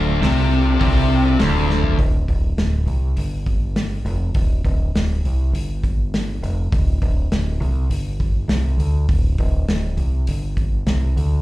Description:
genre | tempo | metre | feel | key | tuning
classic rock | 102 BPM | 4/4 | straight | D minor | A4 = 439 Hz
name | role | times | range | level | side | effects
bright tonewheel organ | sustained chords | 0.0-2.0 s | A3 to F4 | -28 LUFS | right 1 dB | overdrive, fast rotary speaker
distorted electric guitar | riff | 0.0-2.0 s | D2 to C3 | -20 LUFS | left 8 dB | distortion, slapback echo
overdriven electric guitar | riff | 0.0-2.0 s | D2 to C3 | -22 LUFS | right 8 dB | tremolo
growling fingered electric bass | bass | 0.0-11.4 s | D1 to D2 | -19 LUFS | equal | overdrive
vintage drum kit | drums | 0.2-11.3 s | hi-hat, kick drum, snare drum | -22 LUFS | equal | none
room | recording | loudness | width
little or no reverb | live gig heard through the venue's PA, club reverb | -17 LUFS | side -17 dB against mid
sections
0.0-2.0 A section; 2.0-11.4 B section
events
drum fill 1.7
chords
0.0 Dm; 2.0 N.C.

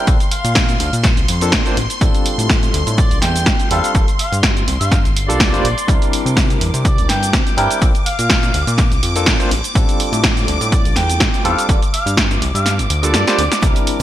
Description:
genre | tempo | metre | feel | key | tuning
filtered disco house | 124 BPM | 4/4 | swing 54% on 16ths | G dorian | A4 = 440 Hz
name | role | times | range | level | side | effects
muted trumpet section | melody | 0.0-13.7 s | D5 to G5 | -24 LUFS | right 1 dB | vintage 12-bit sampler grit, sidechain pumping
barky tine electric piano | accompaniment | 0.0-14.0 s | G3 to C5 | -22 LUFS | equal | medium stereo tremolo, phaser, sidechain pumping
phased string machine | sustained chords | 0.0-14.0 s | C6 to D6 | -26 LUFS | equal | ensemble chorus, phaser, sidechain pumping
fat analog bass | bass | 0.1-14.0 s | F1 to C3 | -20 LUFS | equal | tube saturation, sidechain pumping
electronic kick drum | drums | 0.1-13.7 s | none | -16 LUFS | equal | overdrive
punchy analog drum machine | drums | 0.1-14.0 s | hi-hat, shaker, snare drum | -19 LUFS | right 1 dB | overdrive, sidechain pumping on hats, sidechain pumping on perc, sidechain pumping on cymbals, gated reverb
egg shaker and congas | percussion | 13.6-14.0 s | none | -29 LUFS | right 2 dB | sidechain pumping on perc
room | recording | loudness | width
light reverb | bright 1980s-style digital production | -13 LUFS | side -12 dB against mid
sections
0.0-14.0 A section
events
kick drops out 12.7-13.6; drum fill 13.3-13.6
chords
0.1 Bbmaj7; 1.8 F69/A; 3.9 Gm9; 5.9 C7; 7.8 Bbmaj7; 9.5 F69/A; 11.7 Gm9

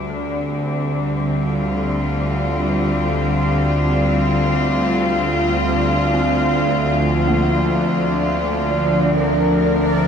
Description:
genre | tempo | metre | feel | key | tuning
dark ambient drone | free time | none | none | D minor | A4 = 436 Hz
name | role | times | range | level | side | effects
warm studio cello section | sustained chords | 0.0-10.1 s | D3 to Bb4 | -18 LUFS | left 1 dB | none
dark detuned synth bell | arpeggios | 0.0-10.1 s | Bb3 to A4 | -29 LUFS | right 3 dB | none
bowed-like drone | drone | 0.0-10.1 s | D2 | -21 LUFS | right 1 dB | built-in reverb
bubbling stepped-filter texture | texture | 7.5-10.1 s | D4 to D5 | -23 LUFS | right 2 dB | chorus, built-in reverb
room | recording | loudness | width
wet plate reverb, RT60 2.9 s | dreamy mix soaked in reverb | -16 LUFS | side -7 dB against mid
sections
0.0-10.1 A section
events
none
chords
0.0 Dmadd11; 7.0 Bb

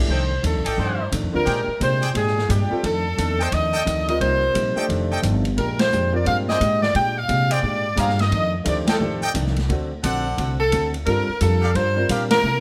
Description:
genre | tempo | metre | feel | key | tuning
jazz, big band swing | 175 BPM | 4/4 | swing 64% on 8ths | F mixolydian | A4 = 445 Hz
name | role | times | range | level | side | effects
clear baby grand piano | accompaniment | 0.0-6.6, 8.6-12.4 s | D3 to D5 | -30 LUFS | equal | none
upright bass | bass | 0.0-12.6 s | F1 to C3 | -26 LUFS | equal | none
clear saxophone section | melody | 0.1-12.6 s | G4 to G5 | -24 LUFS | equal | none
hollow-body jazz guitar | accompaniment | 0.1-12.6 s | F2 to Bb4 | -30 LUFS | equal | none
brilliant trumpet section | stabs | 0.1-12.2 s | G4 to Bb5 | -30 LUFS | equal | none
swinging big-band drum kit | drums | 0.1-12.4 s | hi-hat, kick drum, ride cymbal, snare drum | -30 LUFS | equal | none
room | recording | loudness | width
moderate large studio reverb, RT60 1.3 s | none | -21 LUFS | mono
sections
0.1-12.6 A section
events
band accent 5.7, 8.8, 12.3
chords
0.1 F13; 1.5 Bb13; 2.8 F13; 4.2 Cm7; 4.9 F13; 5.6 Bb13; 8.3 F13; 9.7 D7; 11.1 Gm7

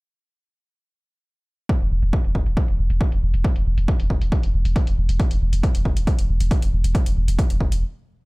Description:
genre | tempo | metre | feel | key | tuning
driving peak-time techno | 137 BPM | 4/4 | straight | unclear | A4 = 441 Hz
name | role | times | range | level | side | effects
electronic hi-hat | drums | 1.7-7.8 s | none | -38 LUFS | left 1 dB | low-pass filter on hats, studio reverb
electronic kick drum | drums | 1.7-7.7 s | none | -20 LUFS | equal | studio reverb
saturated sub bass | bass | 1.8-7.8 s | E1 | -21 LUFS | equal | tube saturation, sidechain pumping, low-pass filter
room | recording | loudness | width
little or no reverb | dry, gritty hardware recording | -18 LUFS | side -27 dB against mid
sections
1.7-8.3 A section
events
filter sweep on drum 1.7-8.3; stop 7.8-8.3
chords
none

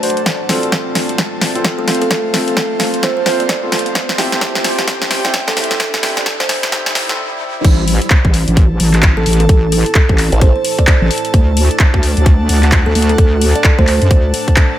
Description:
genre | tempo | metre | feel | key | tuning
bass house | 130 BPM | 4/4 | swing 61% on 16ths | A minor | A4 = 440 Hz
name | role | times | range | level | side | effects
deep dark ambient pad | sustained chords | 0.0-14.8 s | G3 to D5 | -24 LUFS | equal | chorus, built-in reverb, sidechain pumping
dark concert grand piano | stabs | 0.0-7.2 s | C4 to C5 | -22 LUFS | equal | sidechain pumping, ping-pong delay
house drum kit | drums | 0.0-14.7 s | crash cymbal, handclaps, hi-hat, snare drum | -17 LUFS | equal | none
riser | sound effects | 0.0-7.6 s | none | -29 LUFS | equal | none
airy breathy pad | texture | 0.0-14.8 s | C4 to A5 | -24 LUFS | equal | chorus, sidechain pumping
electronic kick drum | drums | 0.3-14.7 s | none | -11 LUFS | equal | overdrive, high-pass filter on kick
kalimba | melody | 1.8-14.0 s | A4 to D5 | -21 LUFS | right 2 dB | ping-pong delay
wobble bass | bass | 7.6-14.3 s | A1 to F#2 | -13 LUFS | equal | chorus, sidechain pumping
formant-sweep wobble bass | bass | 10.3-10.5 s | A1 | -13 LUFS | equal | chorus, sidechain pumping
room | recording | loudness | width
light reverb | high-pass filter | -11 LUFS | side -12 dB against mid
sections
0.0-7.6 A section; 7.6-14.8 B section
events
build-up 0.0-7.6; drum fill 0.0-7.2; filter sweep 0.0-7.6; break 7.2-7.6; drop 7.6-14.8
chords
0.3 F; 4.0 C; 7.6 Am; 11.3 D

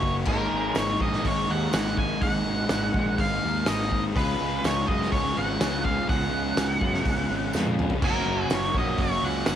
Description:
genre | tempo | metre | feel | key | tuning
rock, shoegaze and dream pop | 124 BPM | 4/4 | straight | F# major | A4 = 440 Hz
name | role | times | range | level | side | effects
octave-fuzz lead guitar | melody | 0.0-9.6 s | A#4 to G#5 | -29 LUFS | equal | distortion, analog delay
biting overdriven guitar | riff | 0.0-9.6 s | C#3 to G#4 | -32 LUFS | equal | cassette tape
overdriven electric guitar | riff | 0.0-9.6 s | C#3 to G#4 | -32 LUFS | right 9 dB | reverse reverb, cassette tape
thick fuzz guitar | riff | 0.0-9.6 s | F#2 to C#4 | -31 LUFS | left 8 dB | distortion, ensemble chorus, cassette tape
fuzz fingered electric bass | bass | 0.0-9.6 s | F#1 to F#2 | -31 LUFS | equal | overdrive
loose indie drum kit | drums | 0.0-9.6 s | crash cymbal, hi-hat, kick drum, snare drum, toms | -28 LUFS | equal | cassette tape
tambourine | percussion | 0.7-9.6 s | none | -43 LUFS | right 11 dB | none
room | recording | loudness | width
moderate booth ambience, RT60 0.2 s | home recording on cassette | -23 LUFS | side -10 dB against mid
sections
0.0-8.0 A section; 8.0-9.6 A section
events
drum fill 7.5-8.0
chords
0.3 G#sus2; 4.2 C#7sus4; 8.0 F#

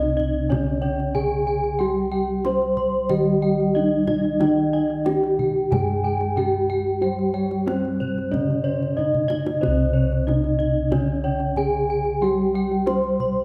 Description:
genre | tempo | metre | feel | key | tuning
Javanese gamelan | 92 BPM | 4/4 | straight | C pelog | A4 = 439 Hz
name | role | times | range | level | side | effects
gamelan-type bronze metallophone | melody | 0.0-13.4 s | C4 to C5 | -26 LUFS | equal | none
gamelan-type bronze metallophone | accompaniment | 0.0-13.4 s | C3 to Ab3-20c | -29 LUFS | equal | none
gamelan-type bossed gongs | arpeggios | 0.0-13.2 s | C5 to C6 | -32 LUFS | equal | none
gamelan-type bronze metallophone | arpeggios | 0.0-13.4 s | C5 to C6 | -32 LUFS | equal | none
gamelan-type bossed gongs | bass | 0.0-13.4 s | C2 to G4-30c | -29 LUFS | equal | none
kendang | percussion | 0.0-13.4 s | none | -33 LUFS | equal | none
room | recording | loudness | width
wet recital hall reverb, RT60 1.4 s | recorded in a church or concert hall | -22 LUFS | mono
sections
0.0-13.4 A section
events
drum fill 9.0-9.6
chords
none

